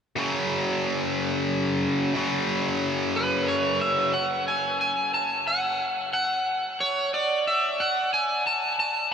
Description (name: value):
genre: rock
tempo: 90 BPM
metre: 3/4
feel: straight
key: unclear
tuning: A4 = 445 Hz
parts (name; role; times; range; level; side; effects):
- tight distorted guitar; riff; 0.2-4.1 s; F#2 to F#3; -26 LUFS; left 1 dB; distortion
- crunchy overdriven guitar; melody; 3.2-9.1 s; B4 to A5; -23 LUFS; equal; analog delay
room: wet huge ambient reverb, RT60 7.1 s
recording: dreamy mix soaked in reverb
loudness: -23 LUFS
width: side -7 dB against mid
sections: 0.2-4.1 A section; 4.1-9.1 B section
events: none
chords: 0.2 F#5; 4.1 N.C.